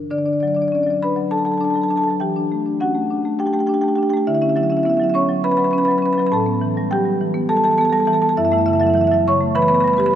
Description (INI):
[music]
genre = classical, contemporary piece for solo marimba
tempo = 204 BPM (eighths)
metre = 7/8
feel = rubato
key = D major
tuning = A4 = 440 Hz
[part]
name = marimba with medium mallets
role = solo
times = 0.0-10.2 s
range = F#2 to C#6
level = -16 LUFS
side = equal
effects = none
[sound]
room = wet cathedral reverb, RT60 4.5 s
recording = dark, warm production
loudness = -16 LUFS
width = side -10 dB against mid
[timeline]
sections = 0.1-10.2 A section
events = none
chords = 0.1 D6; 2.2 Em11; 4.3 Dmaj9; 6.3 Asus2; 8.4 F#m7; 9.6 Em